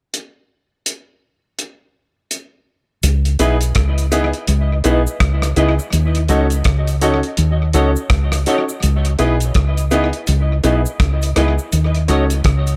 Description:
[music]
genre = lovers rock reggae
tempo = 83 BPM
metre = 4/4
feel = swing 61% on 16ths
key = C# minor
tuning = A4 = 440 Hz
[part]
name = cloth-damped thuddy drum kit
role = drums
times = 0.1-12.8 s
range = hi-hat, kick drum, rim click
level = -23 LUFS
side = equal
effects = tape echo
[part]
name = deep dub fingered electric bass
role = bass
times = 3.0-12.8 s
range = B1 to D#2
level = -18 LUFS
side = equal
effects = none
[part]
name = cabasa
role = percussion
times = 3.0-12.8 s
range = none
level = -34 LUFS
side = equal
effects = none
[part]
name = warm baby grand piano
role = accompaniment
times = 3.4-12.2 s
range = B3 to A4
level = -23 LUFS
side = equal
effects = none
[part]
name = semi-hollow electric guitar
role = stabs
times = 3.4-12.2 s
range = E4 to D#5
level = -24 LUFS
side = equal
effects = ensemble chorus, tape echo
[sound]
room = light reverb, small room reverb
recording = none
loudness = -16 LUFS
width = mono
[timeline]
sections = 0.1-3.0 A section; 3.0-12.8 B section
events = none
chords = 0.1 N.C.; 3.0 C#m9; 5.9 D#m7b5; 8.8 C#m9; 11.7 D#m7b5

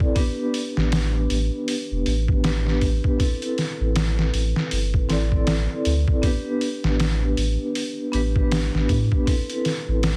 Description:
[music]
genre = trip hop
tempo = 79 BPM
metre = 4/4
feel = swing 59% on 16ths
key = unclear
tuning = A4 = 438 Hz
[part]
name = vibraphone with medium hard mallets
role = accompaniment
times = 0.0-10.2 s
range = B3 to D5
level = -28 LUFS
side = equal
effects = tremolo, tape echo
[part]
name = trip hop sampler-style drum kit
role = drums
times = 0.0-10.2 s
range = hi-hat, kick drum, snare drum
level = -26 LUFS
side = equal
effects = none
[part]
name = warm sub bass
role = bass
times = 0.8-10.2 s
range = E1 to A2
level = -25 LUFS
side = equal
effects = none
[sound]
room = digital ambience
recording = dense, heavily limited modern master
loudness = -22 LUFS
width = mono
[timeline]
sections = 0.0-10.2 A section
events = none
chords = 0.2 G/A; 3.2 Amadd9; 6.2 G/A; 9.3 Amadd9

